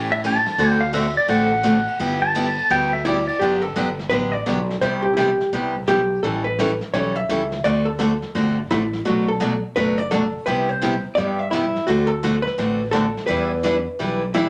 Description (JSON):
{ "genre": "country, western swing", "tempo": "170 BPM", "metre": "4/4", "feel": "swing 63% on 8ths", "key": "G major", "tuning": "A4 = 440 Hz", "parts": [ { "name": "picked steel-string acoustic guitar", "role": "accompaniment", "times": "0.0-14.5 s", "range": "B2 to B4", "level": "-24 LUFS", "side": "equal", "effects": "none" }, { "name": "fretless electric bass", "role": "bass", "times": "0.0-14.5 s", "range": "F#1 to A2", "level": "-31 LUFS", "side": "equal", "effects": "none" }, { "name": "pedal steel guitar", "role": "second line", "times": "0.1-3.4 s", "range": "D5 to A5", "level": "-22 LUFS", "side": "equal", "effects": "none" }, { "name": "vintage brush drum kit", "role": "drums", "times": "0.2-14.5 s", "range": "brushed snare drum, hi-hat, ride cymbal, snare drum", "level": "-35 LUFS", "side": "equal", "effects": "none" }, { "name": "hollow-body jazz guitar", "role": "melody", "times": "3.0-14.5 s", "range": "E4 to E5", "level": "-25 LUFS", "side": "equal", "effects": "none" } ], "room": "wet club reverb, RT60 0.6 s", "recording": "none", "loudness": "-21 LUFS", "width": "mono", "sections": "0.0-3.4 A section; 3.4-14.5 B section", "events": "pedal steel guitar solo 0.0-3.4", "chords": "0.0 A7; 0.6 D7; 2.0 G6; 3.4 Gmaj7; 4.8 Cmaj7; 6.2 A7; 7.6 D7; 9.1 Bm7; 10.5 Cmaj7; 11.9 D7; 13.3 Em7", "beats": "0.24 | 0.59 0.94 1.30 1.65 | 2.00 2.35 2.71 3.06 | 3.41 3.77 4.12 4.47 | 4.82 5.18 5.53 5.88 | 6.24 6.59 6.94 7.29 | 7.65 8.00 8.35 8.71 | 9.06 9.41 9.76 10.12 | 10.47 10.82 11.18 11.53 | 11.88 12.24 12.59 12.94 | 13.30 13.65 14.00 14.36" }